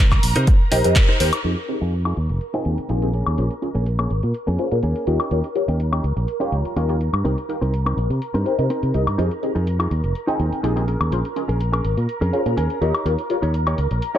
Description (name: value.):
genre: filtered disco house.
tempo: 124 BPM.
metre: 4/4.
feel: straight.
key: F minor.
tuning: A4 = 445 Hz.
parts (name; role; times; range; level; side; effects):
phased string machine; sustained chords; 0.0-14.2 s; Bb4 to Bb5; -30 LUFS; equal; ensemble chorus, phaser, vintage 12-bit sampler grit, sidechain pumping, low-pass filter.
direct-recorded clean electric guitar; riff; 0.0-14.2 s; Bb3 to Ab5; -27 LUFS; equal; sidechain pumping, low-pass filter.
fingered electric bass; bass; 0.0-14.0 s; F1 to C3; -21 LUFS; equal; sidechain pumping, low-pass filter.
electronic kick drum; drums; 0.1-1.1 s; none; -15 LUFS; equal; none.
punchy analog drum machine; drums; 0.1-14.2 s; handclaps, hi-hat, woodblock; -26 LUFS; left 2 dB; sidechain pumping on hats, low-pass filter on hats, low-pass filter on snare, sidechain pumping on perc, low-pass filter on perc.
funky polysynth comp; accompaniment; 0.7-14.2 s; C4 to G5; -24 LUFS; left 1 dB; chorus, phaser, sidechain pumping, low-pass filter.
room: light reverb, digital ambience.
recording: none.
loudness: -18 LUFS.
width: side -11 dB against mid.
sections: 0.0-1.4 A section; 1.4-14.2 B section.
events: band accent 1.0; filter sweep 1.4-14.2; clean electric guitar fill 12.3-13.1.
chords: 0.0 Cm7; 1.4 Fm7; 3.1 Bbm7; 5.1 Eb7; 7.3 Cm7; 9.2 Fm7; 10.9 Bbm7; 12.8 Eb7.